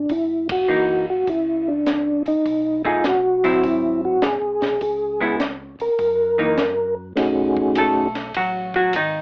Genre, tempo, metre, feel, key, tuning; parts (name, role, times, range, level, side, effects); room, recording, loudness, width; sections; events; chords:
soul jazz organ trio; 102 BPM; 4/4; swing 67% on 8ths; B mixolydian; A4 = 440 Hz
percussive tonewheel organ; melody; 0.0-8.1 s; A3 to A#4; -18 LUFS; equal; slow rotary speaker, chorus vibrato
mellow tonewheel organ; bass; 0.0-9.2 s; F#1 to F#2; -39 LUFS; equal; slow rotary speaker
compact cocktail drum kit; drums; 0.1-9.1 s; hi-hat, kick drum, ride cymbal, snare drum; -27 LUFS; equal
vintage hollow-body jazz guitar; accompaniment; 0.7-9.2 s; D#3 to A4; -20 LUFS; equal
light reverb; worn, warbling old tape, cassette tape, warbly pitch drift, AM radio sound; -17 LUFS; side -34 dB against mid
0.0-7.2 A section; 7.2-9.2 B section
band accent 0.4; hollow-body jazz guitar solo 7.2-9.2
0.1 F#6; 2.5 B6; 3.6 G#7alt; 4.8 C#m7; 6.0 F#6; 7.2 B13